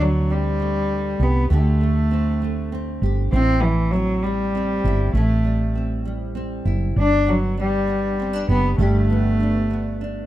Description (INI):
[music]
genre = six-eight pop ballad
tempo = 66 BPM (dotted quarters)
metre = 6/8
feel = straight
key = unclear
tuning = A4 = 441 Hz
[part]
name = warm cello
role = melody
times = 0.0-10.3 s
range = E3 to D4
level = -22 LUFS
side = equal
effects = none
[part]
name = nylon-string guitar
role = accompaniment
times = 0.0-10.3 s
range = G2 to G4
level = -29 LUFS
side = right 1 dB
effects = double-tracked left and right
[part]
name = woody fretless electric bass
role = bass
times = 0.0-10.3 s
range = F#1 to D2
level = -21 LUFS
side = equal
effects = none
[sound]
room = little or no reverb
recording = rough home demo mix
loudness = -18 LUFS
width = side -14 dB against mid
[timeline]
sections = 0.0-10.3 A section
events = none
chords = 0.0 D7sus4; 3.3 Am7; 7.0 G